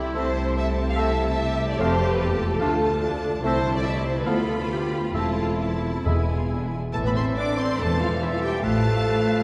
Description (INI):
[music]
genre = quick classical-period movement for symphony orchestra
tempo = 130-149 BPM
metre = 4/4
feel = rubato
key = A minor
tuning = A4 = 440 Hz
[part]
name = rich studio violin section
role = melody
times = 0.0-9.4 s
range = E5 to D6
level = -36 LUFS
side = equal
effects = none
[part]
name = clear oboe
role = second line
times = 0.0-9.4 s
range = A4 to F5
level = -38 LUFS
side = equal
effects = none
[part]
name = hollow small flute group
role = second line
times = 0.0-9.4 s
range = E4 to C6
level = -36 LUFS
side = equal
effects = none
[part]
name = warm clarinet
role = second line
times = 0.0-9.4 s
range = B3 to D5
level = -36 LUFS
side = equal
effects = none
[part]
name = warm symphonic violin section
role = second line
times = 0.0-9.4 s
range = D4 to F5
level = -31 LUFS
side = equal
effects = none
[part]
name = clear studio viola section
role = accompaniment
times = 0.0-9.4 s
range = E3 to G4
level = -34 LUFS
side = equal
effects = none
[part]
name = warm bassoon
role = accompaniment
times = 0.0-9.4 s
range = E3 to A3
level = -36 LUFS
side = equal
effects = none
[part]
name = mellow French horn section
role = sustained chords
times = 0.0-9.4 s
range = E3 to A4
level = -34 LUFS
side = equal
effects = none
[part]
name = rich studio cello section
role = bass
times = 0.0-9.0 s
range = C2 to C3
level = -32 LUFS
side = equal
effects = none
[part]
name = rich studio double bass section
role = bass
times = 0.0-9.0 s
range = E1 to D2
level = -31 LUFS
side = equal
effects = none
[part]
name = timpani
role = percussion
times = 5.1-6.7 s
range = E2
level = -31 LUFS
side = equal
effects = none
[sound]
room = wet church reverb, RT60 3.0 s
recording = dark, warm production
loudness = -24 LUFS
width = mono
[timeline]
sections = 0.0-6.9 A section; 6.9-9.4 B section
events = none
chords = 0.2 Am/C; 1.8 F; 2.6 Dm; 3.4 Am/C; 4.3 Bdim/D; 5.1 Am/E; 6.1 E; 6.9 Am; 8.6 B7(b5, no3)/A